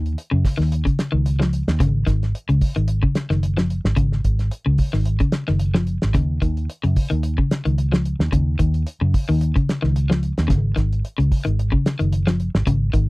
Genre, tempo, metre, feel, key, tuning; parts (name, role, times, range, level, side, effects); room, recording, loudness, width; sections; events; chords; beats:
afrobeat; 110 BPM; 4/4; swing 54% on 16ths; A4 = 441 Hz
electric guitar at the edge of break-up; arpeggios; 0.0-13.1 s; Db3 to F3; -23 LUFS; left 2 dB
vintage muted fingered electric bass; bass; 0.0-13.1 s; Gb1 to Gb2; -20 LUFS; equal
cloth-damped thuddy drum kit; drums; 0.1-13.1 s; hi-hat, kick drum, snare drum; -22 LUFS; equal
little or no reverb; dry, close 1970s-style studio recording; -18 LUFS; side -22 dB against mid
0.0-13.1 A section
0.0 N.C.; 1.8 Ab7sus4; 6.2 Eb7(no3); 10.5 Ab7sus4
0.17 0.72 1.26 | 1.80 2.35 2.89 3.43 | 3.98 4.52 5.06 5.61 | 6.15 6.69 7.24 7.78 | 8.32 8.87 9.41 9.95 | 10.49 11.04 11.58 12.12 | 12.67